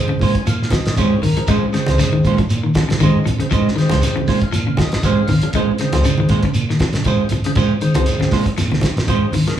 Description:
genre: afrobeat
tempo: 118 BPM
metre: 4/4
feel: swing 55% on 16ths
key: Bb minor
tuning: A4 = 439 Hz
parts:
  - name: percussive tonewheel organ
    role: accompaniment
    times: 0.0-9.5 s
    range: Db3 to Ab5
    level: -24 LUFS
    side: left 1 dB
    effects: slow rotary speaker
  - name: clean electric guitar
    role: arpeggios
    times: 0.0-9.6 s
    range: Db3 to Ab3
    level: -21 LUFS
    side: left 2 dB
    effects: none
  - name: clean electric guitar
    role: stabs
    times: 0.1-9.5 s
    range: Ab3 to C5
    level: -22 LUFS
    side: right 6 dB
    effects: none
  - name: fingered electric bass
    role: bass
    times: 0.1-9.5 s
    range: Bb1 to Bb2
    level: -20 LUFS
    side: equal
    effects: none
  - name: congas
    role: percussion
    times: 0.1-9.6 s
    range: none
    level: -24 LUFS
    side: right 2 dB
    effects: none
  - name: cloth-damped thuddy drum kit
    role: drums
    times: 0.2-9.6 s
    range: hi-hat, kick drum, snare drum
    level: -22 LUFS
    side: equal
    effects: none
  - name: shekere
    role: percussion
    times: 0.2-9.5 s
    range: none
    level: -26 LUFS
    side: right 2 dB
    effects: none
room: moderate large studio reverb, RT60 1.4 s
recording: band playing live in one room, small room ambience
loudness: -14 LUFS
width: side -10 dB against mid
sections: 0.0-9.6 A section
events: tonewheel organ fill 0.0-1.5, 4.0-5.5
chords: 0.0 Bbm9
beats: 0.47 0.98 | 1.49 2.00 2.50 3.01 | 3.52 4.02 4.53 5.03 | 5.54 6.05 6.55 7.06 | 7.56 8.07 8.57 9.08 | 9.59

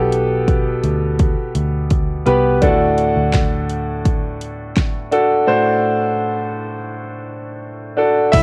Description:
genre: piano-driven pop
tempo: 84 BPM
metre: 4/4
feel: straight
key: D mixolydian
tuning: A4 = 440 Hz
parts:
  - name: clear concert grand piano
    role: accompaniment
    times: 0.0-8.4 s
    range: A2 to E5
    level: -19 LUFS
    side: equal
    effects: cassette tape
  - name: vintage muted picked electric bass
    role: bass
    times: 0.0-8.4 s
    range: B1 to D2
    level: -23 LUFS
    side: equal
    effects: none
  - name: pop drum kit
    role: drums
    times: 0.1-8.4 s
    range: crash cymbal, hi-hat, kick drum, snare drum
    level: -20 LUFS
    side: equal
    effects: cassette tape
room: moderate studio reverb, RT60 0.6 s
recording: home recording on cassette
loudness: -17 LUFS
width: mono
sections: 0.0-8.3 A section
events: none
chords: 0.0 Gadd9/B; 2.6 D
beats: 0.48 1.20 1.91 | 2.62 3.34 4.05 4.77 | 5.48 6.20 6.91 7.62 | 8.34

